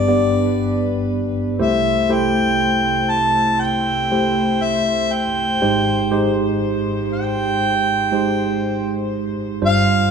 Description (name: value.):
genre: acoustic folk-pop ballad.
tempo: 60 BPM.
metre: 4/4.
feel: straight.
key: unclear.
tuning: A4 = 440 Hz.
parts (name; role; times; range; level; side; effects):
mellow harmonica; melody; 0.0-10.1 s; D5 to A5; -19 LUFS; equal; none.
bright tine electric piano; accompaniment; 0.0-10.1 s; G1 to D5; -19 LUFS; right 1 dB; medium stereo tremolo.
warm chamber string section; sustained chords; 0.0-10.1 s; G2 to C5; -29 LUFS; left 3 dB; none.
room: wet stone room reverb, RT60 1.1 s.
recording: band playing live in one room.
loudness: -16 LUFS.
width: side -6 dB against mid.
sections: 0.0-10.1 A section.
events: none.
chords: 0.0 G; 1.6 C6; 5.6 Abmaj7.